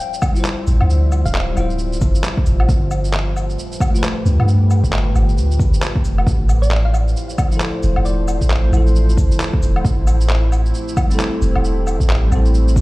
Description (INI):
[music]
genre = future garage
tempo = 134 BPM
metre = 4/4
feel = swing 61% on 16ths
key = D dorian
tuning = A4 = 439 Hz
[part]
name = thumb-piano-like synth pluck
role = melody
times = 0.0-1.4, 6.6-8.5 s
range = D5 to G5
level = -31 LUFS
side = left 1 dB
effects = chorus, phaser, dub echo
[part]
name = deep dark ambient pad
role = sustained chords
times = 0.0-12.8 s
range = F3 to E5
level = -26 LUFS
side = equal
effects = chorus, built-in reverb, sidechain pumping
[part]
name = electronic shaker, cabasa, woodblock and handclaps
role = drums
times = 0.1-12.8 s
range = none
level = -25 LUFS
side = equal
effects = overdrive, small room ambience
[part]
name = electronic kick drum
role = drums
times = 0.2-12.8 s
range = none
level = -18 LUFS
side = equal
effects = overdrive, small room ambience
[part]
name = bell-like tine electric piano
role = accompaniment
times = 0.3-12.8 s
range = F3 to C5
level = -26 LUFS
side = left 1 dB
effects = sidechain pumping, dub echo
[part]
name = soft 808-style bass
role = bass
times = 0.7-12.8 s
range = D1 to G2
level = -15 LUFS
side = equal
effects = sidechain pumping
[sound]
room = little or no reverb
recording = played on a big sound system in a bare room, stone room reverb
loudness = -14 LUFS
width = side -20 dB against mid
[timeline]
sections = 0.0-12.8 A section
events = none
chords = 0.0 Dm11; 2.7 G9; 6.3 Fmaj7; 9.8 Am7